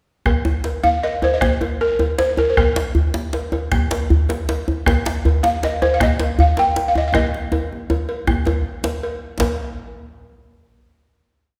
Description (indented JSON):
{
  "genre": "west african traditional, West African drum ensemble",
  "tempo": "105 BPM (dotted quarters)",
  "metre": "12/8",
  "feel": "straight",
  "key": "Eb major pentatonic",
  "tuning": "A4 = 441 Hz",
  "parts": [
    { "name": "bombo", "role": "percussion", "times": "0.3-9.6 s", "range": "none", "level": "-26 LUFS", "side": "equal", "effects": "none" },
    { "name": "cowbell", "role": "percussion", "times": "0.3-9.6 s", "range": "none", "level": "-31 LUFS", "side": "equal", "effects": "none" },
    { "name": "djembe", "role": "percussion", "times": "0.3-9.6 s", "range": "none", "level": "-28 LUFS", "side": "equal", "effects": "none" },
    { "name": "djembe", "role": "percussion", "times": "0.5-9.6 s", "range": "none", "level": "-23 LUFS", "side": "equal", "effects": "none" },
    { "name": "balafon", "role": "melody", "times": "0.8-9.0 s", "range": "Bb4 to G5", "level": "-20 LUFS", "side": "equal", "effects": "none" }
  ],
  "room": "wet recital hall reverb, RT60 1.8 s",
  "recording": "recorded in a church or concert hall",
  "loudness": "-19 LUFS",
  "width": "mono",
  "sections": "0.3-9.4 A section; 9.4-11.6 final hit",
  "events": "drum fill 7.1-9.4",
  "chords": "none",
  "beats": "| 0.27 0.84 1.42 2.00 | 2.57 3.15 3.72 4.29 | 4.87 5.44 6.01 6.58 | 7.14 7.71 8.27 8.84 | 9.40"
}